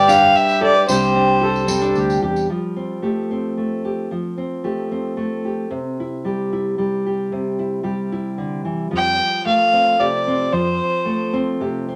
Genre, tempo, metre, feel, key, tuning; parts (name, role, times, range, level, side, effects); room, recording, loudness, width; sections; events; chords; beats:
acoustic folk duo or small band; 112 BPM; 3/4; straight; A4 = 440 Hz
warm fiddle; melody; 0.0-1.9, 9.0-11.3 s; C5 to G5; -19 LUFS; equal
accordion; second line; 0.0-2.5 s; G4 to A4; -21 LUFS; equal
nylon-string guitar; accompaniment; 0.0-12.0 s; C3 to B4; -23 LUFS; equal
fingered electric bass; bass; 0.0-2.5, 8.9-10.8 s; G1 to F2; -29 LUFS; equal
tambourine; percussion; 0.1-2.4 s; -33 LUFS; equal
moderate studio ambience, RT60 0.4 s; -20 LUFS; mono
0.0-2.5 A section; 2.5-8.9 B section; 8.9-12.0 C section
0.0 G; 0.9 Csus2; 2.5 Fadd9; 5.7 C; 8.9 Fadd9
0.35 | 0.89 1.42 1.96 | 2.50 3.03 3.57 | 4.11 4.64 5.18 | 5.71 6.25 6.79 | 7.32 7.86 8.40 | 8.93 9.47 10.00 | 10.54 11.07 11.61